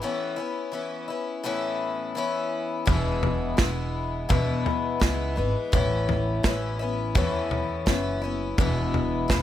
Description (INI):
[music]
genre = indie folk with a building arrangement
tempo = 84 BPM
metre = 4/4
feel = straight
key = E major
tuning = A4 = 440 Hz
[part]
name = picked twelve-string acoustic guitar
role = accompaniment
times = 0.0-9.4 s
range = E2 to E4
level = -27 LUFS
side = left 4 dB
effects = plate reverb
[part]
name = upright bass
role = bass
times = 2.9-9.4 s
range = E1 to E2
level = -29 LUFS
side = right 1 dB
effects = none
[part]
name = natural country drum kit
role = drums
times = 2.9-9.4 s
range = kick drum, snare drum, toms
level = -24 LUFS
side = equal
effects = none
[sound]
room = light reverb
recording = none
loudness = -24 LUFS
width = side -12 dB against mid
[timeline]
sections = 0.0-2.9 A section; 2.9-9.4 B section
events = break 0.0-2.9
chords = 0.0 Aadd9; 2.9 E; 5.7 Aadd9; 8.6 E